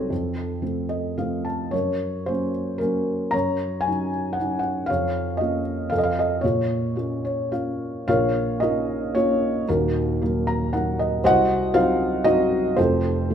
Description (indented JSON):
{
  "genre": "classical, lyrical solo piano",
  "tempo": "104-120 BPM",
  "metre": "3/4",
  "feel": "rubato",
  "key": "Bb minor",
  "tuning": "A4 = 440 Hz",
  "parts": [
    { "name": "felt-muted upright piano", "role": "solo", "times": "0.0-13.3 s", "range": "Eb1 to Bb5", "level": "-21 LUFS", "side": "equal", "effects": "none" }
  ],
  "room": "wet recital hall reverb, RT60 1.5 s",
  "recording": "minimal, uncompressed stereo recording",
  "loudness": "-21 LUFS",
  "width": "side -8 dB against mid",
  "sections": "0.0-8.1 A section; 8.1-13.3 A section",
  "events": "felt piano fill 0.6-1.7, 7.0-8.1, 10.2-11.2",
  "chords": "0.1 F; 1.7 Gb; 3.3 Ebm7/Gb; 4.9 Bbm/F; 5.9 F; 6.4 Bbm; 9.7 Ebm; 11.2 Cdim; 12.8 F"
}